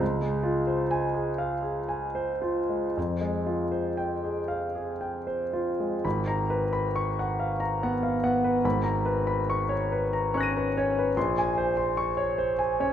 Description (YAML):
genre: classical, impressionist solo piano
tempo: 55-75 BPM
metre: 3/4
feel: rubato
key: F minor, G# dorian from 6.0 s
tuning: A4 = 439 Hz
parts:
  - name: clear concert grand piano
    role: solo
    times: 0.0-12.9 s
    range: G#1 to D#7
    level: -25 LUFS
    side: equal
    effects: none
room: wet scoring stage reverb, RT60 1.7 s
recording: none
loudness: -25 LUFS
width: side -9 dB against mid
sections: 0.0-6.0 A section; 6.0-12.9 B section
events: none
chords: 0.0 Dbmaj7; 3.0 Fmadd9; 6.0 G#m9; 8.6 Bmaj9/G#; 11.2 A#m9